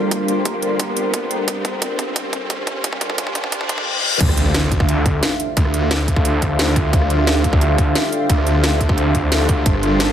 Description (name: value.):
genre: dark technical drum and bass.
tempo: 176 BPM.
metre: 4/4.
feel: straight.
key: D minor.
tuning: A4 = 440 Hz.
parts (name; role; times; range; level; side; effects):
dark analog pad; sustained chords; 0.0-10.1 s; G3 to F5; -23 LUFS; equal; chorus, vintage 12-bit sampler grit, sidechain pumping.
riser, reverse cymbal and impact; sound effects; 0.0-5.6 s; none; -24 LUFS; left 1 dB; none.
granular cloud pad; texture; 0.0-10.1 s; D4 to C5; -25 LUFS; equal; built-in reverb, sidechain pumping.
drum and bass drum kit; drums; 0.1-10.1 s; crash cymbal, hi-hat, rim click, snare drum; -22 LUFS; equal; overdrive, small room ambience.
electronic kick drum; drums; 0.1-9.7 s; none; -19 LUFS; equal; overdrive, high-pass filter on kick, small room ambience.
snarling distorted saw bass; bass; 4.2-10.1 s; G1 to D2; -18 LUFS; equal; distortion, sidechain pumping.
room: light reverb.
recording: high-pass filter.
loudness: -16 LUFS.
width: side -10 dB against mid.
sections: 0.0-4.2 A section; 4.2-10.1 B section.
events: build-up 0.0-4.2; drum fill 0.0-3.9; riser 0.0-3.9; filter sweep 0.0-4.2; reverse cymbal 3.5-4.2; drop 4.2-10.1; impact 4.2-5.6.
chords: 0.0 Gm7; 4.2 Dmadd9.